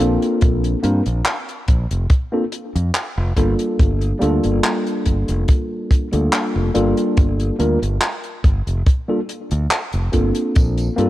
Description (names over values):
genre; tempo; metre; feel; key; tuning
vaporwave; 71 BPM; 4/4; swing 54% on 16ths; unclear; A4 = 440 Hz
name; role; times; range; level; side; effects
tine electric piano; accompaniment; 0.0-11.1 s; G3 to Bb4; -20 LUFS; equal; analog chorus, analog delay
modern bright fingered electric bass; bass; 0.0-11.1 s; F1 to G2; -19 LUFS; equal; none
compact cocktail drum kit; drums; 0.2-11.1 s; handclaps, hi-hat, tambourine; -24 LUFS; equal; none
kick drum; drums; 0.4-10.7 s; none; -14 LUFS; equal; none
room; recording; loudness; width
small room reverb; none; -16 LUFS; side -15 dB against mid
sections
0.0-11.1 A section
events
none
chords
0.0 Gm9